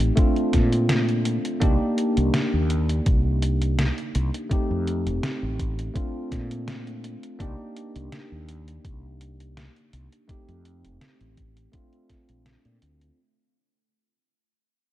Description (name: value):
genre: vaporwave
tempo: 83 BPM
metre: 4/4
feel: swing 53% on 16ths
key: C dorian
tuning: A4 = 439 Hz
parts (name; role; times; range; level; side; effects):
- bell-like tine electric piano; accompaniment; 0.0-13.2 s; A3 to G4; -27 LUFS; equal; wide subtle chorus, analog delay
- mellow fretless electric bass; bass; 0.0-13.1 s; F1 to Bb2; -25 LUFS; equal; tube saturation
- detuned 8-bit digital drum machine; drums; 0.0-13.1 s; hi-hat, snare drum; -29 LUFS; equal; none
- electronic kick drum; drums; 0.2-12.3 s; none; -23 LUFS; equal; none
room: light reverb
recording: dark, warm production, cassette tape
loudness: -21 LUFS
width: side -14 dB against mid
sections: 0.0-13.2 A section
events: fade-out 0.0-13.2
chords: 0.2 Bbmaj9; 1.6 Cm9; 4.5 F9; 6.0 Bbmaj9; 7.4 Cm9; 10.3 F9; 11.7 Bbmaj9